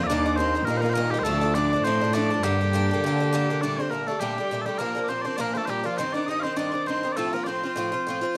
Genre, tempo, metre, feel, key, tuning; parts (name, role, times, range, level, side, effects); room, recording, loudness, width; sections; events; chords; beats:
celtic folk, Celtic reel; 203 BPM; 4/4; swing 55% on 8ths; G minor; A4 = 439 Hz
mellow small bagpipes; melody; 0.0-8.4 s; F4 to F5; -30 LUFS; equal
bright reedy wooden whistle; second line; 0.0-7.7 s; F5 to Eb6; -38 LUFS; equal
sitar; second line; 0.0-7.8 s; F3 to Eb4; -34 LUFS; equal
Irish bouzouki; accompaniment; 0.0-8.4 s; G2 to F4; -31 LUFS; equal
rich cello; bass; 0.0-3.6 s; D2 to D3; -28 LUFS; equal
moderate small room ambience, RT60 0.5 s; -25 LUFS; mono
0.0-3.6 A section; 3.6-8.4 B section
0.1 Eb; 1.3 Dm; 2.4 Gm; 3.6 Gmadd9; 4.8 Bb; 6.0 Cm; 7.2 F
| 0.09 0.38 0.67 0.96 | 1.26 1.55 1.84 2.14 | 2.43 2.73 3.02 3.31 | 3.61 3.91 4.20 4.50 | 4.79 5.09 5.39 5.68 | 5.98 6.28 6.58 6.88 | 7.17 7.47 7.77 8.07 | 8.36